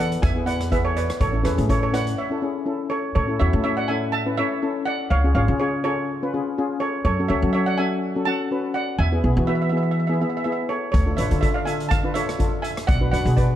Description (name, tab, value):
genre	calypso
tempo	123 BPM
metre	4/4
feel	swing 53% on 16ths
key	A major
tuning	A4 = 443 Hz
part	steel pan	melody	0.0-13.6 s	G#4 to A5	-26 LUFS	right 3 dB	none
part	steel pan	accompaniment	0.0-13.5 s	B3 to B4	-25 LUFS	left 3 dB	none
part	upright bass	bass	0.0-13.6 s	G#1 to F#3	-22 LUFS	equal	none
part	street-band drum kit	drums	0.1-2.2, 10.9-13.5 s	hi-hat, kick drum, rim click	-24 LUFS	equal	none
room	light reverb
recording	dark, warm production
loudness	-20 LUFS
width	side -11 dB against mid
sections	0.0-3.2 A section; 3.2-13.6 A section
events	break 2.2-3.2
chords	0.2 E; 1.2 A; 5.1 C#; 7.0 F#m; 9.0 E; 10.9 Dmadd9; 12.9 Bm